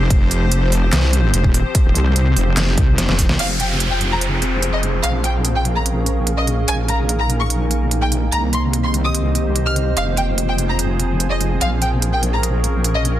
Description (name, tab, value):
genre	heavy wobble dubstep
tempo	146 BPM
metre	4/4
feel	half-time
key	F minor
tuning	A4 = 440 Hz
part	evolving wavetable pad	sustained chords	0.0-13.2 s	Eb3 to C5	-24 LUFS	equal	ensemble chorus, built-in reverb, vintage 12-bit sampler grit, sidechain pumping
part	wobble bass	bass	0.0-13.2 s	Eb1 to C2	-18 LUFS	equal	chorus, overdrive
part	dubstep drum kit	drums	0.1-13.1 s	crash cymbal, handclaps, hi-hat, snare drum	-21 LUFS	right 1 dB	none
part	electronic kick drum	drums	0.1-3.3 s	none	-16 LUFS	equal	none
part	warm symphonic violin section	melody	3.4-13.0 s	Eb5 to F6	-24 LUFS	equal	dub echo
part	downlifter	sound effects	3.4-6.7 s	none	-25 LUFS	right 1 dB	none
part	warbly tape-like pad	texture	3.4-13.2 s	C4 to Db6	-28 LUFS	right 1 dB	chorus, built-in reverb, sidechain pumping
room	light reverb, digital ambience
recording	dense, heavily limited modern master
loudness	-15 LUFS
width	side -12 dB against mid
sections	0.0-3.4 A section; 3.4-13.2 B section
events	drop 0.0-3.4; drum fill 3.0-3.4; filter sweep on ambient pad 3.4-13.2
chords	0.0 Fsus2; 3.4 Fm; 5.0 Bbm7; 6.7 Ebsus4/Bb; 8.3 Cm7; 10.0 Fm; 11.6 Bbm7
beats	| 0.10 0.52 0.93 1.34 | 1.75 2.16 2.57 2.98 | 3.39 3.80 4.21 4.62 | 5.04 5.45 5.86 6.27 | 6.68 7.09 7.50 7.91 | 8.32 8.73 9.14 9.56 | 9.97 10.38 10.79 11.20 | 11.61 12.02 12.43 12.84